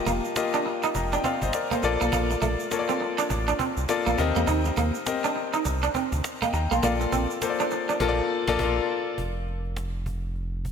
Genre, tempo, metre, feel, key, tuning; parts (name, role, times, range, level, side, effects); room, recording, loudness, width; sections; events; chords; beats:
R&B, new jack swing; 102 BPM; 4/4; swing 61% on 16ths; Bb major; A4 = 440 Hz
clear grand piano; accompaniment; 0.0-9.2 s; Bb3 to C6; -27 LUFS; left 5 dB
electric guitar at the edge of break-up; riff; 0.1-8.0 s; A3 to Eb4; -28 LUFS; right 5 dB; lush chorus
round analog bass; bass; 0.1-10.7 s; F1 to E2; -28 LUFS; right 1 dB
cajon; drums; 0.1-10.7 s; -36 LUFS; equal
egg shaker; percussion; 0.1-8.0 s; -40 LUFS; right 9 dB
moderate lush hall reverb, RT60 2.4 s; bright 1980s-style digital production; -23 LUFS; side -7 dB against mid
0.0-9.2 A section; 9.2-10.7 B section
band accent 8.0-9.2
0.0 F9sus4; 1.8 Bbmaj7; 4.2 Eb6; 6.8 Bbmaj7; 9.2 N.C.
0.36 0.94 1.53 | 2.12 2.71 3.30 3.89 | 4.47 5.06 5.65 6.24 | 6.83 7.42 8.00 8.59 | 9.18 9.77 10.36